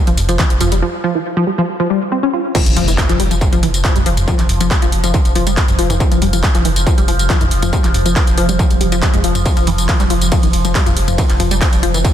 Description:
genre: driving peak-time techno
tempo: 139 BPM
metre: 4/4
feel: straight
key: unclear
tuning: A4 = 440 Hz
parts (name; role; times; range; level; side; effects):
- tight sequenced synth; riff; 0.1-12.0 s; E3 to F4; -18 LUFS; left 2 dB; chorus, sidechain pumping, digital delay
- warm sub bass; bass; 0.1-12.0 s; F1; -18 LUFS; equal; overdrive, sidechain pumping, low-pass filter
- techno drum kit; drums; 0.1-12.1 s; crash cymbal, handclaps, hi-hat, ride cymbal, tambourine, toms; -20 LUFS; equal; overdrive, studio reverb
- electronic kick drum; drums; 0.4-12.1 s; none; -15 LUFS; equal; distortion, overdrive, studio reverb
- overtone-sweeping drone; drone; 3.8-12.1 s; F3; -23 LUFS; right 2 dB; chorus, built-in reverb, phaser, sidechain pumping
- impact; sound effects; 2.5-4.3 s; none; -24 LUFS; equal; none
room: light reverb, digital ambience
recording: dense, heavily limited modern master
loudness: -12 LUFS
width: side -10 dB against mid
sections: 0.0-2.5 A section; 2.5-12.1 B section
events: break 0.8-2.5; drop 2.5-12.1; impact 2.5-4.3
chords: 0.0 F5; 2.5 N.C.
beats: 0.39 | 0.82 1.25 1.69 2.12 | 2.55 2.98 3.41 3.84 | 4.28 4.71 5.14 5.57 | 6.00 6.43 6.87 7.30 | 7.73 8.16 8.59 9.02 | 9.46 9.89 10.32 10.75 | 11.18 11.61 12.05

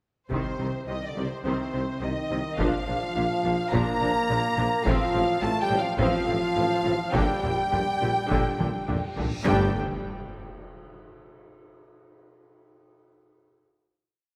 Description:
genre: cinematic, epic orchestral film score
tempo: 105 BPM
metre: 4/4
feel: straight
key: G minor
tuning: A4 = 440 Hz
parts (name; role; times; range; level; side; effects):
- rich studio violin section; melody; 0.3-9.8 s; C5 to Bb5; -34 LUFS; equal; none
- rich symphonic violin section; second line; 0.3-9.8 s; C5 to Bb5; -35 LUFS; equal; none
- rich symphonic viola section; accompaniment; 0.3-9.8 s; D3 to D4; -35 LUFS; equal; none
- mellow French horn section; sustained chords; 0.3-9.7 s; C4 to Bb4; -35 LUFS; equal; none
- warm trombone section; sustained chords; 0.3-9.7 s; C3 to Bb3; -34 LUFS; equal; none
- clear symphonic cello section; bass; 0.3-9.8 s; G2 to C3; -36 LUFS; equal; none
- clear symphonic double bass section; bass; 0.3-9.8 s; G1 to C2; -37 LUFS; equal; none
- mellow tuba; bass; 0.3-9.7 s; G1 to C2; -36 LUFS; equal; none
- taiko ensemble; drums; 0.3-10.6 s; none; -34 LUFS; equal; none
- reverse cymbal and impact; sound effects; 9.1-11.8 s; none; -44 LUFS; equal; none
room: wet concert hall reverb, RT60 2.3 s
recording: none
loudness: -26 LUFS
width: mono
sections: 0.3-9.5 theme; 9.5-11.8 final chord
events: drum fill 8.6-9.5; reverse cymbal 9.1-9.5; impact 9.5-11.8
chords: 0.3 Cm; 2.6 Bb; 4.9 F/A; 7.1 Gm/Bb; 9.5 Gsus2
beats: | 0.30 0.88 1.45 2.02 | 2.59 3.16 3.73 4.29 | 4.86 5.42 5.99 6.57 | 7.15 7.73 8.31 8.89 | 9.47 10.04 10.61 11.18

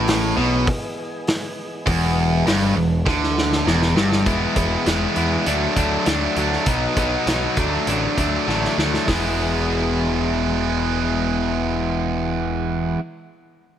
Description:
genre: classic rock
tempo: 100 BPM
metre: 4/4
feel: straight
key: E major, E mixolydian from 4.3 s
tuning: A4 = 440 Hz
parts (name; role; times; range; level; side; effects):
- tonewheel organ; sustained chords; 0.0-4.2 s; E3 to G#4; -32 LUFS; equal; overdrive, slow rotary speaker
- overdriven electric guitar; riff; 0.0-13.0 s; E2 to G#4; -22 LUFS; left 6 dB; none
- tight distorted guitar; riff; 0.0-13.0 s; E2 to E4; -23 LUFS; right 8 dB; distortion
- growling picked electric bass; bass; 0.0-13.0 s; E1 to E2; -25 LUFS; equal; overdrive
- vintage drum kit; drums; 0.1-9.2 s; hi-hat, kick drum, snare drum; -24 LUFS; equal; none
room: light reverb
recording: none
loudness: -18 LUFS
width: side -10 dB against mid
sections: 0.0-4.3 A section; 4.3-9.1 B section; 9.1-11.5 C section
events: drum fill 3.1-4.3, 8.5-9.1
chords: 0.0 E; 5.5 D; 6.7 B; 7.6 D; 9.1 E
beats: 0.07 0.67 1.27 | 1.87 2.47 3.06 3.66 | 4.26 4.86 5.46 6.07 | 6.67 7.27 7.87 8.47 | 9.08 9.68 10.28 10.89

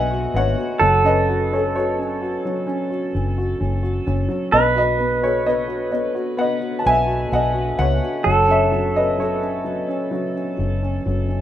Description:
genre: acoustic folk-pop ballad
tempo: 64 BPM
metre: 4/4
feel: straight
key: F# dorian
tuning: A4 = 437 Hz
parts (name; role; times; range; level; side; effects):
- dark upright piano; melody; 0.0-11.4 s; F#3 to A5; -20 LUFS; left 1 dB; none
- pedal steel guitar; second line; 0.0-11.4 s; F#4 to B4; -21 LUFS; right 3 dB; none
- vintage muted fingered electric bass; bass; 0.0-11.4 s; F#1 to C#2; -23 LUFS; equal; none
room: moderate studio reverb, RT60 0.5 s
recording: minimal, uncompressed stereo recording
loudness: -17 LUFS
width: side -11 dB against mid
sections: 0.0-11.4 A section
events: none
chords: 0.0 B7; 0.8 F#m; 4.5 B7; 8.3 F#m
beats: | 0.81 1.74 2.67 3.60 | 4.53 5.46 6.39 7.32 | 8.26 9.19 10.12 11.06

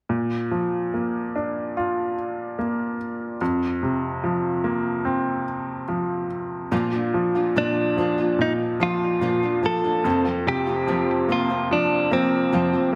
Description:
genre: pop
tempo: 72 BPM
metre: 4/4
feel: straight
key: Bb major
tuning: A4 = 443 Hz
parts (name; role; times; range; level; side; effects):
- bright upright piano; accompaniment; 0.1-13.0 s; F2 to F4; -26 LUFS; equal; none
- nylon-string guitar; arpeggios; 6.7-12.9 s; F2 to F4; -30 LUFS; equal; delay
- direct-recorded clean electric guitar; melody; 7.6-12.9 s; C4 to A4; -25 LUFS; equal; spring reverb
room: wet recital hall reverb, RT60 1.5 s, small room ambience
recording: none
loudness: -24 LUFS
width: mono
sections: 0.1-6.7 A section; 6.7-13.0 B section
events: none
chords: 0.1 Bb; 3.4 Fsus4; 6.7 Bb; 10.0 Fsus4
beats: | 0.09 0.93 1.76 2.58 | 3.41 4.23 5.05 5.88 | 6.72 7.56 8.39 9.22 | 10.05 10.88 11.70 12.52

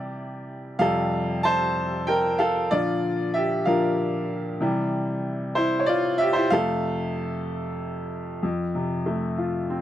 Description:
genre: pop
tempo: 63 BPM (dotted quarters)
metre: 6/8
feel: straight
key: F major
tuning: A4 = 440 Hz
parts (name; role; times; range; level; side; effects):
- bright upright piano; solo; 0.0-9.8 s; F2 to A5; -22 LUFS; equal; none
room: moderate booth ambience, RT60 0.3 s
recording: dry, close 1970s-style studio recording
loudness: -22 LUFS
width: side -12 dB against mid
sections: 0.0-8.4 A section; 8.4-9.8 B section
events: upright piano solo 0.0-8.4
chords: 0.0 Cadd9; 0.8 Fadd9; 2.7 Bb; 4.6 C; 6.5 F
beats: | 0.80 1.75 | 2.71 3.66 | 4.61 5.57 | 6.52 7.47 | 8.43 9.38

